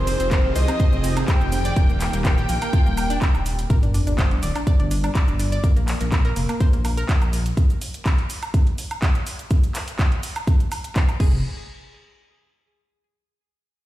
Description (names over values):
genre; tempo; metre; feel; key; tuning
progressive house; 124 BPM; 4/4; straight; unclear; A4 = 440 Hz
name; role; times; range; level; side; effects
warm velvety synth lead; melody; 0.0-3.6 s; C5 to G5; -29 LUFS; equal; chorus, sidechain pumping, ping-pong delay
warm symphonic violin section; second line; 0.0-3.6 s; C5 to G5; -32 LUFS; equal; sidechain pumping, ping-pong delay
supersaw pad; sustained chords; 0.0-3.7 s; Eb3 to Ab4; -30 LUFS; right 1 dB; vintage 12-bit sampler grit, sidechain pumping
analog pluck; arpeggios; 0.0-7.5, 11.2-11.4 s; Bb3 to D5; -30 LUFS; left 1 dB; chorus, sidechain pumping, ping-pong delay
dark detuned saw bass; bass; 0.0-7.5, 11.2-11.4 s; D1 to C2; -24 LUFS; equal; sidechain pumping
pop drum kit; drums; 0.1-11.3 s; crash cymbal, handclaps, hi-hat, shaker, woodblock; -30 LUFS; right 1 dB; none
electronic kick drum; drums; 0.3-11.3 s; none; -19 LUFS; equal; none
sub drop; sound effects; 3.7-5.6 s; none; -26 LUFS; equal; none
room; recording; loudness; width
little or no reverb; played on a big sound system in a bare room, stone room reverb; -18 LUFS; side -15 dB against mid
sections
0.0-3.7 A section; 3.7-11.4 B section; 11.4-13.4 C section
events
drop 0.0-3.7; impact 3.7-5.6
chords
0.0 Fm7; 1.8 Eb; 3.7 G5; 5.6 Bb5; 7.6 N.C.; 11.2 Fm; 11.4 N.C.